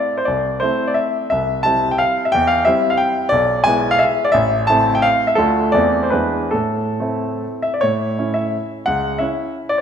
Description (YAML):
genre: classical, romantic triple-time dance for piano with dotted rhythms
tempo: 130-186 BPM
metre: 3/4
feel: rubato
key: A minor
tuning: A4 = 439 Hz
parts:
  - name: warm grand piano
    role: solo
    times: 0.0-9.8 s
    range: A1 to A5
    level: -15 LUFS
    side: equal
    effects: none
room: moderate scoring stage reverb, RT60 1.6 s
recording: minimal, uncompressed stereo recording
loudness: -15 LUFS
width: side -8 dB against mid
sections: 0.0-7.8 A section; 7.8-9.8 B section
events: none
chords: 0.2 Am/C; 1.3 C; 2.3 C/E; 3.3 E7/B; 4.3 Am; 5.4 Dm; 5.7 Am/E; 6.1 E7; 6.5 Am; 7.8 A; 8.9 C#madd11